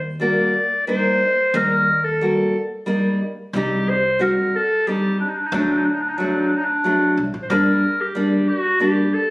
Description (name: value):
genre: klezmer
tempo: 91 BPM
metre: 3/4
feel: straight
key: unclear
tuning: A4 = 440 Hz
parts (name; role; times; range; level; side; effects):
- upright bass; bass; 0.0-7.7 s; G1 to Eb2; -28 LUFS; equal; none
- clear clarinet; melody; 0.2-9.3 s; D4 to D5; -19 LUFS; equal; none
- nylon-string guitar; accompaniment; 0.2-9.1 s; F#3 to F#4; -20 LUFS; equal; none
room: moderate studio ambience, RT60 0.5 s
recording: recorded on a phone in the room, studio reverb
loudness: -17 LUFS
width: side -21 dB against mid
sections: 0.0-7.5 A section; 7.5-9.3 B section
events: speeding up 0.0-9.3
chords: 0.0 Eb; 3.5 Cm; 5.5 D; 7.5 Gm